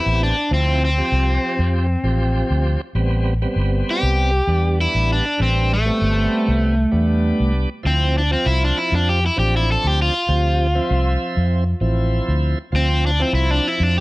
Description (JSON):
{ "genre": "straight-eighth soul blues", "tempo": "98 BPM", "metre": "4/4", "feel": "swing 54% on 16ths", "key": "unclear", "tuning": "A4 = 441 Hz", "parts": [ { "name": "overdriven semi-hollow guitar", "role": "melody", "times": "0.0-14.0 s", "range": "A3 to A4", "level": "-20 LUFS", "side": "equal", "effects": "none" }, { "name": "bright tonewheel organ", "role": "accompaniment", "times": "0.0-14.0 s", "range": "F3 to E5", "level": "-25 LUFS", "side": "right 2 dB", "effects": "slow rotary speaker, overdrive" }, { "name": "vintage muted fingered electric bass", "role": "bass", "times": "0.1-14.0 s", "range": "G1 to F2", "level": "-18 LUFS", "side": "equal", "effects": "none" } ], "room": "little or no reverb", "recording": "none", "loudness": "-16 LUFS", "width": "side -20 dB against mid", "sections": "0.0-14.0 A section", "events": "overdriven electric guitar solo 0.0-14.0", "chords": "0.0 Am9; 0.5 Dm9; 3.0 Am9; 7.8 Dm9" }